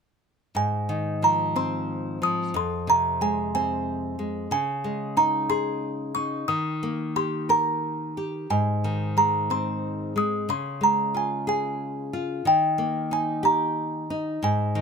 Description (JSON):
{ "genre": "children's music, lullaby", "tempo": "61 BPM (dotted quarters)", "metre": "6/8", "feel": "rubato", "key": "Ab major", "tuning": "A4 = 441 Hz", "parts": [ { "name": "nylon-string guitar", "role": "accompaniment", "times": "0.5-14.8 s", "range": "F2 to Bb4", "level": "-27 LUFS", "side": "left 1 dB", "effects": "none" }, { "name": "music box", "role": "melody", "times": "0.6-14.8 s", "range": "G5 to Eb6", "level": "-24 LUFS", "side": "right 2 dB", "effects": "none" } ], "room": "light reverb", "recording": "close, detailed microphones", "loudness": "-23 LUFS", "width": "side -5 dB against mid", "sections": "0.6-14.8 A section", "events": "none", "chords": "0.6 Ab6; 2.5 Fm; 4.5 Dbsus2; 6.5 Eb; 8.5 Ab; 10.5 Db; 12.5 Eb", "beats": "| 0.55 1.56 | 2.55 3.53 | 4.51 5.49 | 6.48 7.49 | 8.49 9.49 | 10.49 11.48 | 12.46 13.43 | 14.42" }